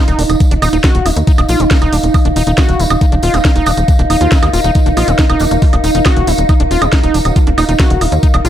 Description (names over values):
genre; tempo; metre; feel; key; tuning
psychedelic trance; 138 BPM; 4/4; straight; Eb minor; A4 = 440 Hz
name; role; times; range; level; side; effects
evolving wavetable pad; sustained chords; 0.0-8.5 s; Eb4; -19 LUFS; right 5 dB; chorus, built-in reverb, sidechain pumping
overdriven acid bass; riff; 0.0-8.5 s; Bb3 to Gb4; -19 LUFS; moving between left 6 dB and right 3 dB; distortion, auto-pan, sidechain pumping, tape echo
warbly tape-like pad; texture; 0.0-8.5 s; Eb4 to F5; -20 LUFS; left 3 dB; chorus, built-in reverb, sidechain pumping
tight sequencer bass; bass; 0.1-8.5 s; Eb1 to Eb2; -14 LUFS; equal; none
drum and bass drum kit; drums; 0.1-8.5 s; hi-hat, snare drum, woodblock; -18 LUFS; right 1 dB; none
resonant blip pluck; second line; 0.2-0.8, 5.4-7.4 s; Eb3 to Bb3; -28 LUFS; left 3 dB; none
tambourine; percussion; 0.2-8.5 s; none; -28 LUFS; right 1 dB; none
electronic kick drum; drums; 0.4-8.3 s; none; -10 LUFS; equal; overdrive
room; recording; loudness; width
light reverb, digital ambience; none; -9 LUFS; side -11 dB against mid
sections
0.0-8.5 A section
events
none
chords
0.0 Eb5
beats
0.40 0.84 | 1.27 1.71 2.14 2.58 | 3.01 3.45 3.88 4.32 | 4.75 5.19 5.62 6.06 | 6.49 6.93 7.36 7.79 | 8.23